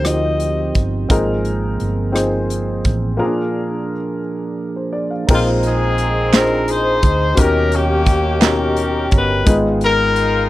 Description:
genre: slow gospel.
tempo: 57 BPM (dotted quarters).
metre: 6/8.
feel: straight.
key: unclear.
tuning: A4 = 440 Hz.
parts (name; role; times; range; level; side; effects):
warm alto saxophone; melody; 0.0-0.8 s; Eb5; -24 LUFS; left 2 dB; tape echo.
dark grand piano; accompaniment; 0.0-10.5 s; Ab2 to F5; -20 LUFS; left 2 dB; none.
mellow tonewheel organ; sustained chords; 0.0-10.5 s; F3 to Bb5; -24 LUFS; right 4 dB; stopped rotary speaker.
hollow-body short-scale fingered electric bass; bass; 0.0-10.5 s; G1 to Eb2; -20 LUFS; equal; none.
modern studio drum kit; drums; 0.0-10.3 s; crash cymbal, hi-hat, kick drum, rim click, snare drum; -16 LUFS; equal; none.
warm horn section; melody; 5.3-10.5 s; Ab3 to C5; -18 LUFS; left 3 dB; none.
group handclap; percussion; 6.3-8.7 s; none; -21 LUFS; right 12 dB; none.
room: studio reverb.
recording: dry, close 1970s-style studio recording.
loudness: -14 LUFS.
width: side -16 dB against mid.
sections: 0.0-5.3 A section; 5.3-10.5 B section.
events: break 3.2-5.3.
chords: 0.0 Eb69; 1.1 Ab69; 3.2 Bb7; 5.3 Bb9sus4; 7.4 Eb7b13; 9.5 Abm6.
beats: 0.06 | 1.11 2.15 | 3.20 4.24 | 5.29 6.33 | 7.38 8.42 | 9.46.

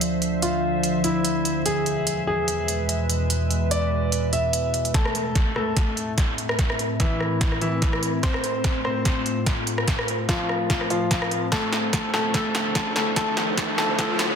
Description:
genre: heavy wobble dubstep.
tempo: 146 BPM.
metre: 4/4.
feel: swing 54% on 16ths, half-time.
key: A harmonic minor.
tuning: A4 = 438 Hz.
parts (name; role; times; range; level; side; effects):
evolving wavetable pad; sustained chords; 0.0-14.4 s; D2 to E5; -26 LUFS; equal; chorus, built-in reverb, sidechain pumping.
big-room dance drum kit; drums; 0.0-14.3 s; hi-hat, rim click, snare drum; -26 LUFS; right 1 dB; overdrive, high-pass filter on hats, high-pass filter on snare, high-pass filter on room.
clear grand piano; melody; 0.4-14.4 s; E3 to E5; -26 LUFS; left 1 dB; dub echo.
electronic kick drum; drums; 4.9-14.1 s; none; -23 LUFS; equal; overdrive.
riser; sound effects; 12.3-14.4 s; none; -30 LUFS; right 1 dB; none.
room: moderate plate reverb, RT60 2.8 s.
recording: dense, heavily limited modern master, high-pass filter.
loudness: -21 LUFS.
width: side -6 dB against mid.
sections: 0.0-4.9 A section; 4.9-14.4 B section.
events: build-up 4.9-14.4; drum fill 4.9-14.4; filter sweep on ambient pad 4.9-14.4; filter sweep 4.9-14.4; riser 12.3-14.4.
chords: 0.0 Dm7; 1.7 E; 4.9 Am; 8.2 F/A; 11.5 Dm7.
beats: | 0.01 0.42 0.83 1.25 | 1.66 2.07 2.48 2.89 | 3.30 3.71 4.12 4.53 | 4.95 5.36 5.77 6.18 | 6.59 7.00 7.41 7.82 | 8.23 8.64 9.05 9.46 | 9.88 10.29 10.70 11.11 | 11.52 11.93 12.34 12.75 | 13.16 13.57 13.99.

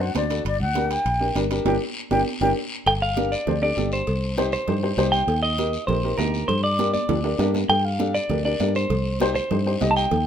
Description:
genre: latin, cumbia.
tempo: 199 BPM.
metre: 4/4.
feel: straight.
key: G minor.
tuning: A4 = 444 Hz.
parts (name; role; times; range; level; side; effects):
mellow concert flute; melody; 0.0-2.5 s; D5 to G5; -24 LUFS; left 1 dB; none.
dark upright piano; accompaniment; 0.0-10.0 s; D4 to Eb5; -26 LUFS; left 1 dB; none.
fingered electric bass; bass; 0.0-10.3 s; G1 to G2; -25 LUFS; equal; none.
congas; percussion; 0.0-10.3 s; none; -31 LUFS; right 5 dB; none.
guiro; percussion; 0.1-10.3 s; none; -36 LUFS; left 4 dB; none.
timbales and cowbell; percussion; 0.2-10.3 s; none; -32 LUFS; right 2 dB; none.
clean electric guitar; second line; 2.9-10.2 s; Bb4 to A5; -24 LUFS; equal; none.
room: moderate studio reverb, RT60 0.8 s.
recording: minimal, uncompressed stereo recording.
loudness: -20 LUFS.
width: side -9 dB against mid.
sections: 0.0-2.9 A section; 2.9-10.3 B section.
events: drum fill 1.7-2.9, 7.1-7.7; band accent 1.7-2.9; upright piano fill 2.3-2.9; clean electric guitar solo 2.9-10.3.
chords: 0.5 Gm; 2.9 G5; 4.1 Cm; 5.3 Eb; 6.5 Gm; 8.9 Cm.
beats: 0.15 | 0.46 0.76 1.06 1.36 | 1.66 1.96 2.27 2.57 | 2.87 3.17 3.47 3.77 | 4.08 4.38 4.68 4.98 | 5.28 5.58 5.89 6.19 | 6.49 6.79 7.09 7.40 | 7.70 8.00 8.30 8.60 | 8.91 9.21 9.51 9.81 | 10.11.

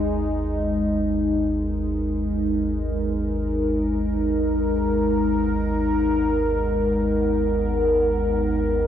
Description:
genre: dark ambient drone.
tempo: free time.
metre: none.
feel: none.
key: G# minor.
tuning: A4 = 440 Hz.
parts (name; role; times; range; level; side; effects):
sweeping resonant pad; sustained chords; 0.0-8.9 s; G#3 to A#4; -22 LUFS; equal; chorus, phaser.
gamelan-type bronze metallophone; arpeggios; 0.0-3.7 s; G#3 to A#4; -40 LUFS; left 1 dB; none.
deep rumbling drone; drone; 0.0-8.9 s; G#1 to D#2; -26 LUFS; equal; built-in reverb, lush chorus.
wind-like tuned noise texture; texture; 0.8-8.9 s; B3; -41 LUFS; right 5 dB; none.
room: wet lush hall reverb, RT60 2.5 s.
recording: dreamy mix soaked in reverb, cassette tape.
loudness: -20 LUFS.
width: side -9 dB against mid.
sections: 0.0-8.9 A section.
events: none.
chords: 0.0 G#m.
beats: free time.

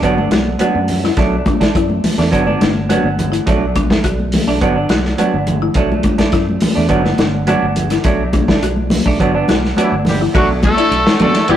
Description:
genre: afrobeat.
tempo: 105 BPM.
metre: 4/4.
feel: straight.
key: B minor.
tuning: A4 = 440 Hz.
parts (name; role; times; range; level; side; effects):
semi-hollow electric guitar; stabs; 0.0-11.6 s; F#3 to D4; -18 LUFS; right 4 dB; spring reverb.
fingered electric bass; bass; 0.0-11.6 s; G1 to B2; -20 LUFS; equal; none.
warm soul drum kit; drums; 0.0-11.6 s; hi-hat, kick drum, ride cymbal, snare drum; -17 LUFS; left 1 dB; none.
congas; percussion; 0.2-11.4 s; none; -19 LUFS; left 1 dB; none.
marimba with medium hard mallets; arpeggios; 0.3-11.6 s; D4 to F#4; -22 LUFS; left 5 dB; none.
bright trumpet; melody; 9.8-11.6 s; E4 to A4; -18 LUFS; left 2 dB; none.
edgy tenor saxophone; second line; 9.8-11.6 s; E3 to A3; -20 LUFS; right 2 dB; none.
barky tine electric piano; accompaniment; 11.1-11.3 s; A3 to F#4; -25 LUFS; left 3 dB; overdrive.
room: moderate stone room reverb, RT60 1.1 s.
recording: rough rehearsal-room recording, tube saturation.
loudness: -12 LUFS.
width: side -10 dB against mid.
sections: 0.0-10.3 A section; 10.3-11.6 B section.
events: none.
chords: 0.0 Gmaj7; 1.2 Bm7; 2.3 Gmaj7; 3.5 Bm7; 4.6 Gmaj7; 5.8 Bm7; 6.9 Gmaj7; 8.0 Bm7; 9.2 Gmaj7; 10.3 Bm7.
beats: 0.04 0.61 | 1.18 1.75 2.32 2.90 | 3.47 4.04 4.61 5.18 | 5.75 6.33 6.90 7.47 | 8.05 8.62 9.20 9.77 | 10.35 10.92 11.49.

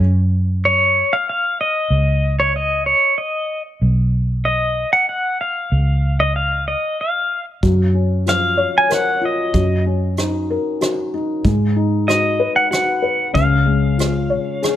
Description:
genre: acoustic folk-pop ballad.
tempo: 94 BPM.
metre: 3/4.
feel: straight.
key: unclear.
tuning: A4 = 440 Hz.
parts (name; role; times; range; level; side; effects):
vintage muted fingered electric bass; bass; 0.0-14.4 s; B1 to G#2; -17 LUFS; equal; none.
pedal steel guitar; melody; 0.7-14.8 s; C#5 to G#5; -17 LUFS; equal; none.
felt-muted upright piano; accompaniment; 7.6-14.8 s; C#3 to C#5; -20 LUFS; left 3 dB; none.
soft brush drum kit; drums; 7.6-14.8 s; hi-hat, kick drum, rim click; -22 LUFS; right 1 dB; none.
room: light reverb.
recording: none.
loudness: -15 LUFS.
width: side -12 dB against mid.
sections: 0.0-14.8 A section.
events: none.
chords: 0.0 D#m9/F# (rootless); 1.9 C#sus2; 3.8 B; 5.7 C#add9; 7.6 F#maj7; 9.5 D#m7/F#; 11.5 G#m7; 13.4 C#.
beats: 0.63 1.27 | 1.90 2.54 3.17 | 3.81 4.45 5.08 | 5.72 6.36 7.00 | 7.63 8.27 8.91 | 9.55 10.18 10.82 | 11.45 12.08 12.72 | 13.35 13.99 14.63.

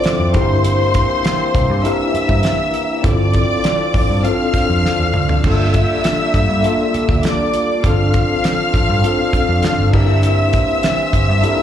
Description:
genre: lush 1970s-style soul.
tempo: 100 BPM.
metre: 4/4.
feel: straight.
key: unclear.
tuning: A4 = 441 Hz.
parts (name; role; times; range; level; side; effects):
clear studio string section; second line; 0.0-11.6 s; C5 to F6; -19 LUFS; equal; slapback echo.
mellow tine electric piano; accompaniment; 0.0-11.6 s; Bb3 to Bb4; -20 LUFS; left 3 dB; medium stereo tremolo, slapback echo.
warm French horn section; sustained chords; 0.0-11.6 s; E3 to F4; -25 LUFS; right 1 dB; none.
damped 70s drum kit; drums; 0.0-11.6 s; crash cymbal, hi-hat, kick drum, snare drum, toms; -19 LUFS; equal; none.
vibraphone with soft mallets; texture; 0.0-7.7 s; D4 to G5; -28 LUFS; moving between left 8 dB and right 3 dB; auto-pan.
vintage muted picked electric bass; bass; 0.2-11.4 s; G1 to G2; -16 LUFS; right 1 dB; none.
room: light reverb.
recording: live gig heard through the venue's PA, club reverb.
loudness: -13 LUFS.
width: side -10 dB against mid.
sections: 0.0-11.6 A section.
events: drum fill 4.8-5.4.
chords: 0.4 C7/G; 3.0 Dm7/G; 5.4 Gm7; 7.8 Dm7/G; 9.9 C7/G.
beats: 0.05 | 0.65 1.25 1.85 2.45 | 3.05 3.65 4.25 4.85 | 5.45 6.04 6.64 7.24 | 7.84 8.44 9.04 9.64 | 10.23 10.83 11.43.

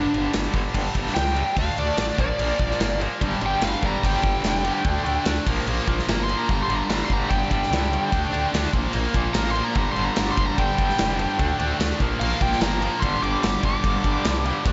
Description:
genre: hard rock.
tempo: 147 BPM.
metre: 4/4.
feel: straight.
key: G minor.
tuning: A4 = 440 Hz.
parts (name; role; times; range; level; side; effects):
smooth overdriven lead guitar; melody; 0.0-14.7 s; D4 to D6; -29 LUFS; equal; slapback echo, analog delay.
overdriven electric guitar; riff; 0.0-14.7 s; G2 to D4; -31 LUFS; equal; tremolo, slapback echo.
growling FM bass; bass; 0.0-14.7 s; F1 to D2; -30 LUFS; equal; none.
big rock drum kit; drums; 0.1-14.7 s; crash cymbal, kick drum, snare drum; -28 LUFS; equal; none.
distorted electric guitar; riff; 3.2-14.7 s; G2 to D4; -30 LUFS; equal; overdrive, slapback echo.
room: moderate lush hall reverb, RT60 1.8 s.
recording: big arena sound, nothing above 7.8 kHz.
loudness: -23 LUFS.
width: mono.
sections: 0.0-14.7 A section.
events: lead electric guitar solo 0.0-14.7.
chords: 0.0 G5; 1.6 D5; 2.2 Bb; 3.2 G5; 4.8 D5; 5.5 Bb5; 6.5 G5; 8.1 D5; 8.7 Bb5; 9.8 G5; 11.4 D5; 12.0 Bb5; 13.0 G5.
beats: 0.35 0.76 1.17 | 1.57 1.98 2.39 2.80 | 3.21 3.62 4.03 4.44 | 4.85 5.26 5.67 6.08 | 6.49 6.89 7.30 7.71 | 8.12 8.53 8.94 9.35 | 9.76 10.17 10.58 10.98 | 11.39 11.80 12.21 12.62 | 13.02 13.43 13.84 14.25 | 14.65.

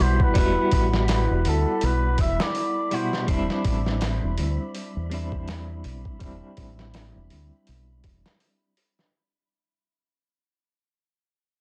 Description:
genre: trip hop.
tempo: 82 BPM.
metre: 4/4.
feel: swing 57% on 16ths.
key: unclear.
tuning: A4 = 440 Hz.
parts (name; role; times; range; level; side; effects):
trumpet with cup mute; melody; 0.0-3.3 s; A4 to E5; -31 LUFS; equal; vintage 12-bit sampler grit, tape echo.
clean electric guitar; accompaniment; 0.0-8.7 s; B2 to F#4; -32 LUFS; equal; tremolo, low-pass filter, tape echo.
warbly tape-like pad; sustained chords; 0.0-9.1 s; G3 to B5; -35 LUFS; equal; chorus, built-in reverb.
deep dub fingered electric bass; bass; 0.0-8.2 s; E1 to E2; -27 LUFS; equal; none.
wind-like tuned noise texture; texture; 0.0-9.2 s; B5; -42 LUFS; equal; built-in reverb.
trip hop sampler-style drum kit; drums; 0.2-9.1 s; hi-hat, kick drum, snare drum; -29 LUFS; equal; none.
room: little or no reverb.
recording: none.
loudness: -24 LUFS.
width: mono.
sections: 0.0-9.1 A section.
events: fade-out 0.0-9.1; filter sweep on clean electric guitar 0.0-9.1.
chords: 0.0 Emadd9; 3.3 Cadd9/E.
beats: | 0.36 1.09 1.82 2.55 | 3.29 4.02 4.75 5.48 | 6.21 6.94 7.67 8.41.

